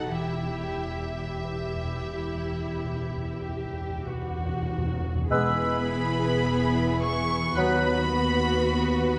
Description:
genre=classical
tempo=45-56 BPM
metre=4/4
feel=rubato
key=E minor, E major from 5.3 s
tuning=A4 = 440 Hz
part: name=warm symphonic violin section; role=melody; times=0.0-9.2 s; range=E5 to C#6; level=-35 LUFS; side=equal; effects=none
part: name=warm symphonic violin section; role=second line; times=0.0-9.2 s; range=D#4 to B4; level=-35 LUFS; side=equal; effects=none
part: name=rich symphonic viola section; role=accompaniment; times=0.0-9.2 s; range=B3 to G4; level=-34 LUFS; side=equal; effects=none
part: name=concert harp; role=arpeggios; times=0.0-9.2 s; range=B2 to B5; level=-40 LUFS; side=equal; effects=none
part: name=rich symphonic cello section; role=bass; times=0.0-9.2 s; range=D#2 to B2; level=-37 LUFS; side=equal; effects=none
part: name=warm symphonic double bass section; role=bass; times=0.0-9.2 s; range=E1 to D#2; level=-36 LUFS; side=equal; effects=none
part: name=timpani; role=percussion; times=0.1-7.0 s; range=E2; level=-36 LUFS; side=equal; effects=none
part: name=bright flute section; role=second line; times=5.3-8.1 s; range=E6 to F#6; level=-34 LUFS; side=equal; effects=none
part: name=mellow clarinet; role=second line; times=5.3-8.0 s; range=B3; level=-39 LUFS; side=equal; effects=none
part: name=warm oboe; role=second line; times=5.3-8.0 s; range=B4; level=-36 LUFS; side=equal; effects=none
part: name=warm bassoon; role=accompaniment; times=5.3-8.0 s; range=F#3 to G#3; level=-33 LUFS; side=equal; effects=none
part: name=mellow French horn section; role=sustained chords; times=5.3-8.0 s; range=F#3 to B3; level=-35 LUFS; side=equal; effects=none
room=moderate scoring stage reverb, RT60 1.7 s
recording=nothing above 10.8 kHz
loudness=-27 LUFS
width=mono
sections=0.0-5.3 A section; 5.3-9.2 B section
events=timpani fill 0.1-5.3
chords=0.1 Em; 5.3 E; 7.6 B/D#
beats=| 0.11 1.44 2.77 4.06 | 5.31 6.47 7.58 8.66

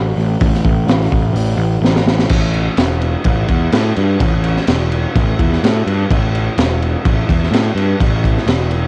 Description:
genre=garage rock duo or trio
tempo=127 BPM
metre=4/4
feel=straight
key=unclear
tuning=A4 = 440 Hz
part: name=fuzz picked electric bass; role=bass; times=0.0-8.8 s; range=E1 to A2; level=-17 LUFS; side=equal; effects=overdrive
part: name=crunchy breakbeat drum kit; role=drums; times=0.4-8.8 s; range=crash cymbal, hi-hat, kick drum, snare drum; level=-19 LUFS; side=equal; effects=cassette tape
room=little or no reverb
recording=home recording on cassette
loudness=-15 LUFS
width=mono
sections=0.0-2.3 A section; 2.3-8.9 B section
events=drum fill 1.8-2.3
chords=none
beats=| 0.42 0.89 1.36 1.84 | 2.31 2.79 3.26 3.73 | 4.21 4.68 5.15 5.62 | 6.10 6.57 7.04 7.51 | 7.99 8.46

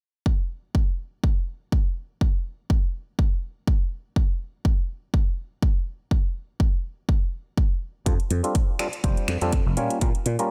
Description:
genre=filtered disco house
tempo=123 BPM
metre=4/4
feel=swing 55% on 16ths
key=F major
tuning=A4 = 440 Hz
part: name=electronic kick drum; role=drums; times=0.3-10.1 s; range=none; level=-24 LUFS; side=equal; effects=small room ambience
part: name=clav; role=accompaniment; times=8.1-10.5 s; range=G3 to Db5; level=-30 LUFS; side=equal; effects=phaser, sidechain pumping, low-pass filter
part: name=dry thumbed slap bass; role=bass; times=8.1-10.4 s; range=F1 to Bb2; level=-28 LUFS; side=equal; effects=sidechain pumping, low-pass filter
part: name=house drum kit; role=drums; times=8.1-10.5 s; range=finger snaps, hi-hat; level=-34 LUFS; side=equal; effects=small room ambience
room=little or no reverb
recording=none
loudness=-25 LUFS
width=mono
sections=0.3-10.5 A section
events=none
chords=0.3 N.C.; 8.1 F69; 9.8 Bbm6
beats=| 0.26 0.74 1.23 1.72 | 2.21 2.70 3.18 3.67 | 4.16 4.65 5.14 5.62 | 6.11 6.60 7.09 7.58 | 8.06 8.55 9.04 9.53 | 10.01

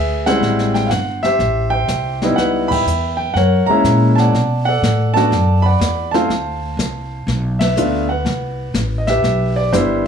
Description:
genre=jazz piano trio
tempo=123 BPM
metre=4/4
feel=swing 68% on 8ths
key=unclear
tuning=A4 = 440 Hz
part: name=clear grand piano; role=melody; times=0.0-10.1 s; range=G3 to B5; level=-16 LUFS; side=equal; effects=none
part: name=upright bass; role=bass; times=0.0-10.1 s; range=G1 to B2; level=-19 LUFS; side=equal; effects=none
part: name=jazz brush drum kit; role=drums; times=0.3-10.1 s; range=brushed snare drum, crash cymbal, hi-hat, kick drum, ride cymbal, snare drum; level=-24 LUFS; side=left 3 dB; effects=none
room=light reverb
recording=small room ambience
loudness=-14 LUFS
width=side -7 dB against mid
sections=0.0-10.1 A section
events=band accent 2.6, 7.5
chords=0.4 Am7; 2.4 C#m7b5; 3.4 F#7; 4.3 Bm7; 6.3 Dm7; 7.3 Bmadd11; 8.3 Cmaj7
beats=| 0.42 0.91 1.40 1.89 | 2.38 2.87 3.36 3.85 | 4.34 4.83 5.32 5.81 | 6.30 6.79 7.28 7.77 | 8.26 8.74 9.23 9.72

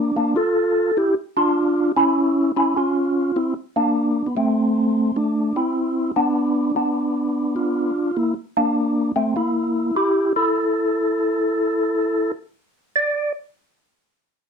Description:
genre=jazz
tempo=100 BPM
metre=4/4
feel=swing 66% on 8ths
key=unclear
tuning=A4 = 441 Hz
part: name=percussive tonewheel organ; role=solo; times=0.0-13.3 s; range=A3 to D5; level=-18 LUFS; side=equal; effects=fast rotary speaker
room=light reverb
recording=none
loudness=-18 LUFS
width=side -6 dB against mid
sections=0.0-8.1 A section; 8.1-12.9 B section; 12.9-14.5 C section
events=none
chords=0.0 Bbmaj7; 0.9 C#m; 3.3 Amadd11; 5.7 Bmadd11; 6.9 Bdim; 8.1 C13 (rootless); 10.5 N.C.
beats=0.35 | 0.95 1.55 2.15 2.75 | 3.35 3.95 4.55 5.15 | 5.75 6.35 6.95 7.55 | 8.15 8.75 9.35 9.95 | 10.55 11.15 11.75 12.35 | 12.95

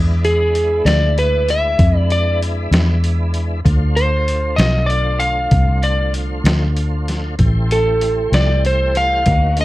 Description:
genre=slow blues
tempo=64 BPM (dotted quarters)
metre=12/8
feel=straight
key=A minor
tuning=A4 = 445 Hz
part: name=tonewheel organ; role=sustained chords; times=0.0-9.6 s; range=D3 to C#5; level=-27 LUFS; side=equal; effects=slow rotary speaker, chorus vibrato, plate reverb
part: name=vintage muted fingered electric bass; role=bass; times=0.0-9.6 s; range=A1 to F2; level=-16 LUFS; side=equal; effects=none
part: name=electric slide guitar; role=melody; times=0.2-9.6 s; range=G#4 to F5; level=-17 LUFS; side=equal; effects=plate reverb
part: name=trip hop sampler-style drum kit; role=drums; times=0.2-9.6 s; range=hi-hat, kick drum, snare drum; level=-19 LUFS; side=equal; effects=overdrive
room=little or no reverb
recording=none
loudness=-14 LUFS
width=side -17 dB against mid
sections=0.0-9.6 A section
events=none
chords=0.0 E7; 3.7 Dm7; 7.4 Am7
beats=0.85 1.78 2.72 | 3.65 4.58 5.52 6.46 | 7.39 8.33 9.27

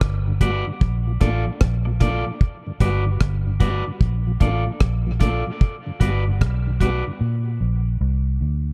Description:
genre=dub reggae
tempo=75 BPM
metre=4/4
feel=swing 63% on 16ths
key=unclear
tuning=A4 = 440 Hz
part: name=vintage muted fingered electric bass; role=bass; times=0.0-8.7 s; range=G1 to Bb2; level=-24 LUFS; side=equal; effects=none
part: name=deep reggae drum kit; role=drums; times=0.0-7.0 s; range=hi-hat, kick drum, rim click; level=-20 LUFS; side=equal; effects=none
part: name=mellow tonewheel organ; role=accompaniment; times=0.3-7.1 s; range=G2 to F#4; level=-32 LUFS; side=equal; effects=dub echo
part: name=electric guitar at the edge of break-up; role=accompaniment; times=0.4-7.0 s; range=F4 to D5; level=-31 LUFS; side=equal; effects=dub echo
room=small room ambience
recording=dark, warm production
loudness=-21 LUFS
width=mono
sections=0.0-8.7 A section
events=drums muted 7.2-8.7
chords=0.0 Gmaj7; 0.8 Bbmaj7; 2.4 Gmaj7; 4.0 Bbmaj7; 5.6 Gmaj7; 7.2 Bb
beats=0.02 0.82 1.61 | 2.41 3.21 4.01 4.81 | 5.61 6.40 7.20 8.00

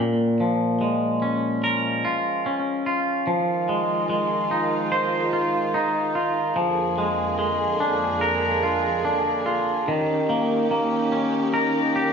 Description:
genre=post-rock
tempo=73 BPM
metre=4/4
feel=straight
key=unclear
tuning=A4 = 438 Hz
part: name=twangy electric guitar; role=arpeggios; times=0.0-12.1 s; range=Bb2 to C5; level=-21 LUFS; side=equal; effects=slapback echo
part: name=warm studio string section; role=sustained chords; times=3.3-12.1 s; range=F2 to Ab4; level=-27 LUFS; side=right 3 dB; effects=none
room=wet recital hall reverb, RT60 1.5 s, studio reverb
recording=nothing above 7.6 kHz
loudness=-20 LUFS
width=side -6 dB against mid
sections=0.0-12.1 A section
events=none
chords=0.0 Bbm7; 3.3 Fm7; 6.6 Bb7/F; 9.9 Eb7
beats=0.81 1.63 2.45 | 3.28 4.10 4.92 5.75 | 6.57 7.40 8.22 9.05 | 9.88 10.71 11.53

